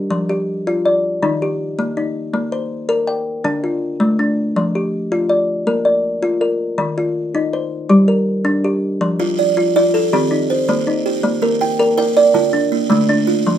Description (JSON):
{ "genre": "southern african traditional, mbira-style interlocking cycle", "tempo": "108 BPM (dotted quarters)", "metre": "12/8", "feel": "straight", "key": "unclear", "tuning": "A4 = 438 Hz", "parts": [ { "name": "kalimba", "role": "arpeggios", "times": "0.0-13.6 s", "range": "D3 to G5", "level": "-16 LUFS", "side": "left 1 dB", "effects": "none" }, { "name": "buzzing kalimba", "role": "arpeggios", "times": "9.2-13.6 s", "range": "D3 to G5", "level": "-17 LUFS", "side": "right 7 dB", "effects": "none" } ], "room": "moderate studio ambience, RT60 0.5 s", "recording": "none", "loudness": "-15 LUFS", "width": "side -10 dB against mid", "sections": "0.0-9.0 A section; 9.0-13.6 A section", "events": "none", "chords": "0.1 Dmadd11/F; 1.2 Eb; 2.3 Gmadd11/Bb; 3.5 Dm; 4.6 Dmadd11/F; 5.7 Bb; 6.8 Eb5; 7.9 Gm; 9.0 F; 10.1 Eb; 11.2 Bb; 12.3 Dm" }